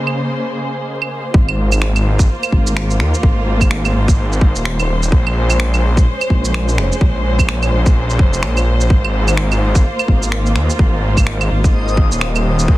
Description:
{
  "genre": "future garage",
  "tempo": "127 BPM",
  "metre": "4/4",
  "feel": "swing 60% on 16ths",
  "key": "unclear",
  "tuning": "A4 = 439 Hz",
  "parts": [
    { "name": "muted studio string section", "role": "sustained chords", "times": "0.0-12.8 s", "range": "Db3 to C5", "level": "-21 LUFS", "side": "equal", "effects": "sidechain pumping" },
    { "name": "backwards swelling texture", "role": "texture", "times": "0.0-1.4, 10.2-12.8 s", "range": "Eb5", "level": "-31 LUFS", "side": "left 3 dB", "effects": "built-in reverb" },
    { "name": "electronic claves, shaker and finger snaps", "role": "drums", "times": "0.1-12.7 s", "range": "none", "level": "-22 LUFS", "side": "right 3 dB", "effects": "low-pass filter on perc, studio reverb, soft clipping on snare, low-pass filter on snare" },
    { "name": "swelling detuned saw bass", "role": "bass", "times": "1.3-12.8 s", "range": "Eb1 to Eb2", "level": "-16 LUFS", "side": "equal", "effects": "sidechain pumping" },
    { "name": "electronic kick drum", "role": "drums", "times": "1.3-12.8 s", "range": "none", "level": "-12 LUFS", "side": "equal", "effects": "studio reverb" }
  ],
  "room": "digital ambience",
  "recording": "dense, heavily limited modern master, vinyl crackle",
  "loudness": "-13 LUFS",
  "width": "side -17 dB against mid",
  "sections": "0.0-1.3 A section; 1.3-12.8 B section",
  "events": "filter sweep 0.0-1.3",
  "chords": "0.0 Bbm9; 1.3 Ab69; 5.1 Bbm9; 8.9 Ab69",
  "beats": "0.40 0.87 | 1.34 1.82 2.29 2.76 | 3.23 3.71 4.18 4.65 | 5.12 5.60 6.07 6.54 | 7.01 7.49 7.96 8.43 | 8.90 9.38 9.85 10.32 | 10.79 11.27 11.74 12.21 | 12.68"
}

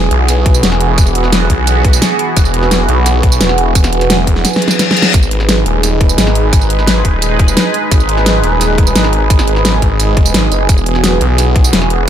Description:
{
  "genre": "dark technical drum and bass",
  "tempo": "173 BPM",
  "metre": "4/4",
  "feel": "straight",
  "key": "unclear",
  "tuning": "A4 = 441 Hz",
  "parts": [
    { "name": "sweeping resonant pad", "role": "sustained chords", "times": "0.0-12.1 s", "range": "E3 to B4", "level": "-15 LUFS", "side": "right 2 dB", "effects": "chorus, sidechain pumping" },
    { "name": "snarling distorted saw bass", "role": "bass", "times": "0.0-12.1 s", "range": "D#1 to B1", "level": "-13 LUFS", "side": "equal", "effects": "distortion, tube saturation, sidechain pumping" },
    { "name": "dubstep drum kit", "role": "drums", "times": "0.1-12.0 s", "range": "hi-hat, snare drum, tambourine", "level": "-15 LUFS", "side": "equal", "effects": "small room ambience" },
    { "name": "electronic kick drum", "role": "drums", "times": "0.5-11.6 s", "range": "none", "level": "-10 LUFS", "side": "equal", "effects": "small room ambience" },
    { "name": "reverse cymbal", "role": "sound effects", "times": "4.6-5.1 s", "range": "none", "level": "-16 LUFS", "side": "left 7 dB", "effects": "none" }
  ],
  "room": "light reverb, digital ambience",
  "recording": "none",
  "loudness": "-9 LUFS",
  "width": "side -10 dB against mid",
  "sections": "0.0-12.1 A section",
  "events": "drum fill 4.4-5.1; reverse cymbal 4.6-5.1",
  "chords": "0.0 E; 5.1 G#m; 10.7 E",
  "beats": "0.28 0.63 | 0.98 1.32 1.67 2.02 | 2.37 2.71 3.06 3.41 | 3.75 4.10 4.45 4.79 | 5.14 5.49 5.83 6.18 | 6.53 6.87 7.22 7.57 | 7.92 8.26 8.61 8.96 | 9.30 9.65 10.00 10.34 | 10.69 11.04 11.38 11.73 | 12.08"
}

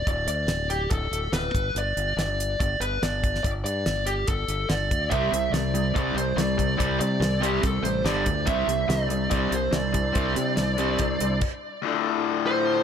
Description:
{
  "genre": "classic rock",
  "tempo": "143 BPM",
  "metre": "4/4",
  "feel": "straight",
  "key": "unclear",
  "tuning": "A4 = 441 Hz",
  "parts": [
    { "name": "fuzz lead guitar", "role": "melody", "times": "0.0-12.8 s", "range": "G4 to E5", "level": "-27 LUFS", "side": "equal", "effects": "distortion, digital delay" },
    { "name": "modern bright fingered electric bass", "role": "bass", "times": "0.0-11.4 s", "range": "D1 to C3", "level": "-29 LUFS", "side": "equal", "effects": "none" },
    { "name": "damped 70s drum kit", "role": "drums", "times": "0.1-11.5 s", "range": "crash cymbal, hi-hat, kick drum, snare drum", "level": "-28 LUFS", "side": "equal", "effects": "none" },
    { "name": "tonewheel organ", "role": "sustained chords", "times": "5.1-12.8 s", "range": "D4 to D5", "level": "-36 LUFS", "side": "equal", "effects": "overdrive, chorus vibrato, slow rotary speaker" },
    { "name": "cranked stack guitar", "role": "riff", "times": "5.1-12.8 s", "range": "D2 to C4", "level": "-28 LUFS", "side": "left 11 dB", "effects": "overdrive" },
    { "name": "overdriven semi-hollow guitar", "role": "riff", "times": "5.1-11.4 s", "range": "G2 to C4", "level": "-29 LUFS", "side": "right 12 dB", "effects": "none" }
  ],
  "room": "light reverb, small room ambience",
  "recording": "none",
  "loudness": "-22 LUFS",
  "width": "side -8 dB against mid",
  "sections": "0.0-11.8 A section",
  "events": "stop 11.4-11.8",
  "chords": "0.0 D5; 1.5 G5; 5.1 Cadd9; 8.1 G5; 8.5 Cadd9; 11.4 N.C.; 11.8 Dm",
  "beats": "| 0.07 0.49 0.91 1.33 | 1.75 2.17 2.59 3.01 | 3.43 3.85 4.27 4.69 | 5.11 5.53 5.95 6.38 | 6.79 7.22 7.64 8.06 | 8.48 8.90 9.32 9.74 | 10.16 10.58 11.00 11.42 | 11.84 12.26 12.68"
}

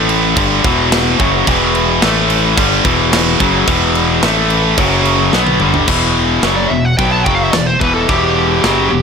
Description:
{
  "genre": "heavy metal",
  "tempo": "109 BPM",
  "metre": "4/4",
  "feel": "straight",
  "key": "E minor",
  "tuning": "A4 = 440 Hz",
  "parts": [
    { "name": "scooped high-gain guitar", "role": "riff", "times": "0.0-9.0 s", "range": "E2 to B3", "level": "-16 LUFS", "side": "right 14 dB", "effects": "distortion" },
    { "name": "tight distorted guitar", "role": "riff", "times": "0.0-9.0 s", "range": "E2 to B3", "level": "-15 LUFS", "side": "left 12 dB", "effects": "distortion" },
    { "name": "growling fingered electric bass", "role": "bass", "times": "0.0-9.0 s", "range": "E1 to B1", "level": "-19 LUFS", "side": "equal", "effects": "overdrive" },
    { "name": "tight metal drum kit", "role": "drums", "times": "0.1-8.8 s", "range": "china cymbal, crash cymbal, kick drum, snare drum, toms", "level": "-17 LUFS", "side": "right 1 dB", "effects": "none" },
    { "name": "high-gain lead guitar", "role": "melody", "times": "6.6-9.0 s", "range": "G4 to A5", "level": "-17 LUFS", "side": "equal", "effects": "distortion" }
  ],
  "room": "light reverb, small room reverb",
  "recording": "none",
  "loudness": "-10 LUFS",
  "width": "side -6 dB against mid",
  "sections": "0.0-5.9 A section; 5.9-9.0 B section",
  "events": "drum fill 5.3-5.9; lead electric guitar solo 5.9-9.0",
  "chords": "0.4 Em; 2.0 A5; 2.6 Em; 4.2 A5; 4.8 F#5; 5.3 Gmaj7; 5.9 Em",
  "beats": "0.36 0.91 | 1.47 2.02 2.57 3.12 | 3.67 4.22 4.77 5.32 | 5.88 6.43 6.98 7.53 | 8.08 8.64"
}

